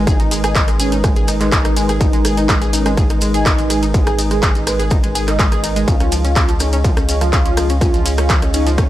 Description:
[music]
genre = melodic techno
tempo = 124 BPM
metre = 4/4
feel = straight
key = G# dorian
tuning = A4 = 439 Hz
[part]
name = dark analog pad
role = sustained chords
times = 0.0-8.9 s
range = G#3 to E#5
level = -23 LUFS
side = left 1 dB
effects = chorus, vintage 12-bit sampler grit, sidechain pumping
[part]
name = tight sequenced synth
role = arpeggios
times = 0.0-8.9 s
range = E#3 to G#4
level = -23 LUFS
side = right 1 dB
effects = chorus, sidechain pumping, tape echo
[part]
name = round analog bass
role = bass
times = 0.0-8.9 s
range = G#1 to C#2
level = -20 LUFS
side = equal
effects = tube saturation, sidechain pumping
[part]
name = mellow synth brass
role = melody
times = 0.1-8.7 s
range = C#4 to D#5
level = -23 LUFS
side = right 1 dB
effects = chorus, sidechain pumping, tape echo
[part]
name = electronic kick drum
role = drums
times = 0.1-8.9 s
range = none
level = -16 LUFS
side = equal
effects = distortion, overdrive
[part]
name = techno drum kit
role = drums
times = 0.1-8.9 s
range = handclaps, hi-hat, ride cymbal, rim click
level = -22 LUFS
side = equal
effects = overdrive
[part]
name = maracas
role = percussion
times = 0.1-8.9 s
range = none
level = -27 LUFS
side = left 2 dB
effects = none
[sound]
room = little or no reverb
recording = dry, gritty hardware recording, transformer saturation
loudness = -13 LUFS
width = side -14 dB against mid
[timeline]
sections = 0.0-8.9 A section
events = none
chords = 0.0 G#m; 5.9 C#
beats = | 0.07 0.56 1.04 1.52 | 2.01 2.49 2.98 3.46 | 3.94 4.43 4.91 5.39 | 5.88 6.36 6.85 7.33 | 7.81 8.30 8.78

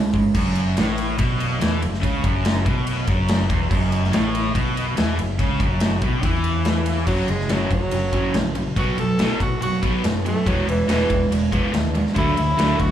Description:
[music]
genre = classic rock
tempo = 142 BPM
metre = 4/4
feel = straight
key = unclear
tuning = A4 = 441 Hz
[part]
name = crunchy overdriven guitar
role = riff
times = 0.0-12.9 s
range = E2 to B3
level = -22 LUFS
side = right 1 dB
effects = slapback echo
[part]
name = fingered electric bass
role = bass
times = 0.0-12.9 s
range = E1 to G#2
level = -24 LUFS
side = equal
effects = none
[part]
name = big rock drum kit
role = drums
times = 0.1-12.9 s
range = crash cymbal, hi-hat, kick drum, ride cymbal, snare drum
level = -23 LUFS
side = equal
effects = none
[part]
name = edgy tenor saxophone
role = melody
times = 7.1-12.9 s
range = E3 to A4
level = -25 LUFS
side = right 1 dB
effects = plate reverb, slapback echo
[sound]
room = light reverb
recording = live gig heard through the venue's PA, club reverb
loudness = -18 LUFS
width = side -10 dB against mid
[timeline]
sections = 0.3-7.1 A section; 7.1-12.9 B section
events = tenor saxophone solo 7.1-12.9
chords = 0.3 F#5; 7.1 F#; 8.8 B5; 10.5 E; 12.2 D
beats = | 0.35 0.77 1.19 1.61 | 2.03 2.45 2.87 3.29 | 3.70 4.12 4.54 4.96 | 5.38 5.81 6.23 6.65 | 7.07 7.49 7.92 8.34 | 8.76 9.19 9.61 10.04 | 10.46 10.88 11.31 11.73 | 12.16 12.59

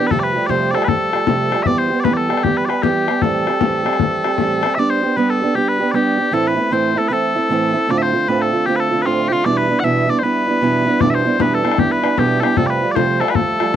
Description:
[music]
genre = celtic folk, Celtic hornpipe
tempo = 154 BPM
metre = 4/4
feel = swing 64% on 8ths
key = A minor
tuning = A4 = 439 Hz
[part]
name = mellow small bagpipes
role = melody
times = 0.0-13.8 s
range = F4 to F#5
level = -18 LUFS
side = left 2 dB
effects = none
[part]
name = fingerpicked acoustic archtop guitar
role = accompaniment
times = 0.0-13.8 s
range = D2 to G4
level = -18 LUFS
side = right 4 dB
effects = none
[part]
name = bodhran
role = percussion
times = 0.1-4.7, 11.0-13.7 s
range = none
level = -20 LUFS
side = left 10 dB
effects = none
[sound]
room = light reverb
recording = dry, close 1970s-style studio recording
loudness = -14 LUFS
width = side -10 dB against mid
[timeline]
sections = 0.0-4.8 A section; 4.8-13.8 A section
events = none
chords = 0.1 Fadd9; 1.7 Em; 3.2 Am7; 4.8 G; 6.3 Am; 7.9 Dm7; 9.5 Em7; 12.6 Fadd9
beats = | 0.10 0.49 0.88 1.27 | 1.66 2.05 2.44 2.83 | 3.22 3.61 4.00 4.39 | 4.78 5.17 5.55 5.94 | 6.33 6.72 7.11 7.50 | 7.89 8.28 8.67 9.06 | 9.45 9.84 10.23 10.62 | 11.01 11.40 11.79 12.18 | 12.57 12.96 13.35 13.74

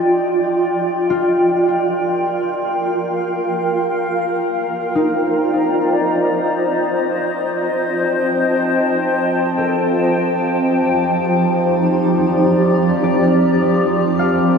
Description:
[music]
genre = ambient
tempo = free time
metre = none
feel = none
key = F mixolydian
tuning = A4 = 441 Hz
[part]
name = granular cloud pad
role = sustained chords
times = 0.0-14.6 s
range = F3 to Bb5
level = -16 LUFS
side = equal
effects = built-in reverb, shimmer reverb
[part]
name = concert harp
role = arpeggios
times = 1.1-14.6 s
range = Eb4 to F5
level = -24 LUFS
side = left 2 dB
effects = ping-pong delay, shimmer reverb
[part]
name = overtone-sweeping drone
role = drone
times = 8.0-14.6 s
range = F3 to C4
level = -19 LUFS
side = right 1 dB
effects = chorus, built-in reverb, phaser
[sound]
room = wet cathedral reverb, RT60 6.6 s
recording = in a vast, echoing space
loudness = -15 LUFS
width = side -6 dB against mid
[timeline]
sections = 0.0-14.6 A section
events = none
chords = 0.0 Ebmaj7/F; 1.1 Gm7/F; 4.2 Cm7; 7.3 F7; 10.3 Ebmaj7/F; 13.4 Gm7/F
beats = free time

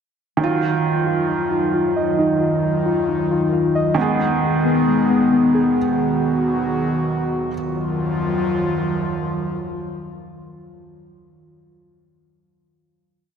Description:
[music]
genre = hip hop, trap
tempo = 134 BPM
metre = 4/4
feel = half-time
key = Eb minor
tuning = A4 = 442 Hz
[part]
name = felt-muted upright piano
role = accompaniment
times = 0.4-7.5 s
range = Eb3 to Ab4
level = -22 LUFS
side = right 5 dB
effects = none
[part]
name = airy breathy pad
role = sustained chords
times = 0.4-10.8 s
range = Eb3 to Ab4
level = -22 LUFS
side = equal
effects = chorus
[part]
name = muted felt-like synth keys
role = arpeggios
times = 0.4-6.9 s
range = Ab3 to Eb5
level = -19 LUFS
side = left 3 dB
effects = chorus, tape echo
[sound]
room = wet plate reverb, RT60 2.8 s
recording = echo-heavy mix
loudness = -17 LUFS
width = side -7 dB against mid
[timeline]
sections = 0.4-7.6 breakdown; 7.6-11.1 final chord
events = none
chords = 0.4 Ebmadd9; 4.0 Abm; 7.6 Ebmadd9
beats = | 0.40 0.84 1.29 1.74 | 2.19 2.63 3.08 3.53 | 3.98 4.42 4.87 5.32 | 5.77 6.22 6.66 7.11 | 7.56 8.01 8.46 8.90 | 9.35 9.80 10.25 10.69

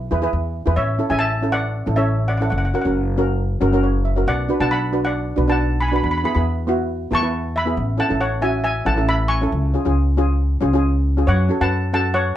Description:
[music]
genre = calypso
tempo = 137 BPM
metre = 4/4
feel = straight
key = A major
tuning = A4 = 440 Hz
[part]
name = upright bass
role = bass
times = 0.0-12.3 s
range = F#1 to F#2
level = -20 LUFS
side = equal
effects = none
[part]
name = steel pan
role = accompaniment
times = 0.1-12.2 s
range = B3 to E5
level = -22 LUFS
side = right 1 dB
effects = none
[part]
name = steel pan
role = melody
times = 0.8-12.4 s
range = C#5 to C#6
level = -22 LUFS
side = left 1 dB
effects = none
[sound]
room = light reverb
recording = dark, warm production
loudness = -17 LUFS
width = side -12 dB against mid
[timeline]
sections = 0.8-12.4 A section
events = steel pan fill 3.6-4.3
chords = 0.0 E; 0.8 A; 2.5 F#; 4.3 Bm; 6.0 E; 7.8 A; 9.5 C#; 11.3 F#m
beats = 0.33 | 0.77 1.21 1.65 2.08 | 2.52 2.96 3.40 3.84 | 4.28 4.71 5.15 5.59 | 6.03 6.46 6.90 7.34 | 7.78 8.21 8.65 9.09 | 9.53 9.97 10.40 10.84 | 11.28 11.72 12.15

